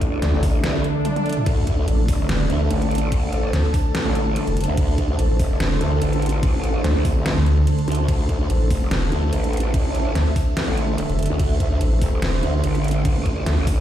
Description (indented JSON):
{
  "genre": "heavy wobble dubstep",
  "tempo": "145 BPM",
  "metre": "4/4",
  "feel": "swing 55% on 16ths, half-time",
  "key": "unclear",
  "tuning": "A4 = 440 Hz",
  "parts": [
    { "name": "evolving wavetable pad", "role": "sustained chords", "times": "0.0-13.8 s", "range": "D3 to C6", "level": "-26 LUFS", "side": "right 2 dB", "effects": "phaser, built-in reverb, sidechain pumping" },
    { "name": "growl bass", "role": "bass", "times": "0.0-13.8 s", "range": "F1 to D2", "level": "-22 LUFS", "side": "equal", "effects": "chorus, overdrive" },
    { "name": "dubstep drum kit", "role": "drums", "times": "0.0-13.8 s", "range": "crash cymbal, hi-hat, snare drum, toms", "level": "-29 LUFS", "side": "equal", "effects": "none" },
    { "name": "electronic kick drum", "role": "drums", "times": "0.0-13.8 s", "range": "none", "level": "-21 LUFS", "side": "equal", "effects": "none" },
    { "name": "ethereal airy pad", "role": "texture", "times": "0.0-13.8 s", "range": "D4 to A5", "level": "-29 LUFS", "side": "right 1 dB", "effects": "ensemble chorus, built-in reverb, sidechain pumping" },
    { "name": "vowel-sweep wobble bass", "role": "bass", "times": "0.2-13.6 s", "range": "E1 to D2", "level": "-19 LUFS", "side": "equal", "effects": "chorus, overdrive" },
    { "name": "swell", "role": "sound effects", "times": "0.8-1.5 s", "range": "none", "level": "-30 LUFS", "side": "left 1 dB", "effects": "none" }
  ],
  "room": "light reverb",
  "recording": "played on a big sound system in a bare room, large studio reverb",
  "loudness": "-18 LUFS",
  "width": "side -11 dB against mid",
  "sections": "0.0-13.8 A section",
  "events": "swell 0.8-1.5; drum fill 1.1-1.5",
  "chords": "0.0 D5",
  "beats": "0.22 0.64 1.05 | 1.46 1.88 2.29 2.71 | 3.12 3.53 3.95 4.36 | 4.77 5.19 5.60 6.02 | 6.43 6.84 7.26 7.67 | 8.09 8.50 8.91 9.33 | 9.74 10.15 10.57 10.98 | 11.39 11.81 12.22 12.64 | 13.05 13.46"
}